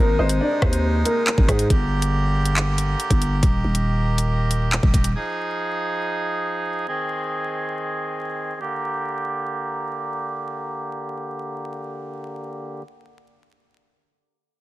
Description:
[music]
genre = hip hop, drill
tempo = 139 BPM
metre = 4/4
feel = half-time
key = G phrygian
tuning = A4 = 439 Hz
[part]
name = dark concert grand piano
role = melody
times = 0.0-1.7 s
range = Ab3 to D5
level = -24 LUFS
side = left 1 dB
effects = digital delay
[part]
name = accordion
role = sustained chords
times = 0.0-12.8 s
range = C3 to Ab4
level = -26 LUFS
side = right 1 dB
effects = low-pass filter
[part]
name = growling 808-style bass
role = bass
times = 0.0-5.1 s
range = Eb1 to Ab2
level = -21 LUFS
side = equal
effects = none
[part]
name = drill drum kit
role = drums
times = 0.3-5.1 s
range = handclaps, hi-hat, kick drum, rim click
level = -20 LUFS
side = equal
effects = overdrive
[sound]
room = digital ambience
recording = dense, heavily limited modern master, vinyl crackle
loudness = -20 LUFS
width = side -17 dB against mid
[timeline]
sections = 0.0-1.7 A section; 1.7-8.6 B section; 8.6-12.1 C section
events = none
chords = 0.0 Ab; 1.7 Gm; 3.4 Eb; 5.2 Fm7; 6.9 Ab; 8.6 Gm

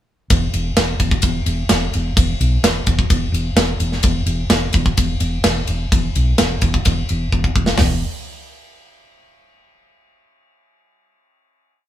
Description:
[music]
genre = hard rock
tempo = 128 BPM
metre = 4/4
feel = straight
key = unclear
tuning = A4 = 438 Hz
[part]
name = hollow-body short-scale fingered electric bass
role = bass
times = 0.3-8.0 s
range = E1 to B1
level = -19 LUFS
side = equal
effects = none
[part]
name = tight metal drum kit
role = drums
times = 0.3-7.9 s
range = hi-hat, kick drum, ride cymbal, snare drum, toms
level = -17 LUFS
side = equal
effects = none
[sound]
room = light reverb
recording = band playing live in one room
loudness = -15 LUFS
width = side -12 dB against mid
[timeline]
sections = 0.3-7.8 riff; 7.8-9.7 final note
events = drum fill 7.3-7.8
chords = none

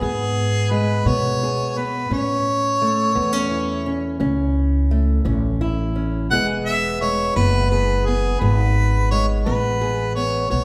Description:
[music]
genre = acoustic country blues, solo or duo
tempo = 57 BPM (dotted quarters)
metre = 12/8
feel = straight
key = E major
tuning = A4 = 441 Hz
[part]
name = mellow harmonica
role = melody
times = 0.0-10.6 s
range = G#4 to F#5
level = -25 LUFS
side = equal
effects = none
[part]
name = fingerpicked old ladder-braced acoustic guitar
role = accompaniment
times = 0.0-10.6 s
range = E2 to G#4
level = -26 LUFS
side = equal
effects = none
[part]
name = upright bass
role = bass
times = 0.0-10.6 s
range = E1 to B2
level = -24 LUFS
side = equal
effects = none
[sound]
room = wet recital hall reverb, RT60 1.5 s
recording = recorded in a church or concert hall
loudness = -20 LUFS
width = mono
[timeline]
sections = 0.0-10.6 A section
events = none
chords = 0.0 E; 2.1 A; 6.3 E

